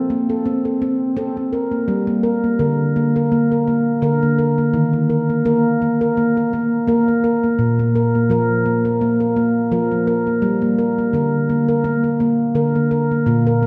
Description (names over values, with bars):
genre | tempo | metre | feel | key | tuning
world meditative, meditative tuned percussion | 84 BPM | 4/4 | swing 55% on 16ths | G minor | A4 = 440 Hz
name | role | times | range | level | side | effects
handpan | solo | 0.0-13.7 s | Bb2 to Bb4 | -18 LUFS | equal | none
room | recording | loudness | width
wet recital hall reverb, RT60 1.6 s, studio ambience | dark, warm production | -18 LUFS | mono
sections
0.0-13.3 A section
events
none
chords
0.0 F (rootless); 1.9 Gm; 4.7 Eb5; 7.6 Bb5; 10.4 Gm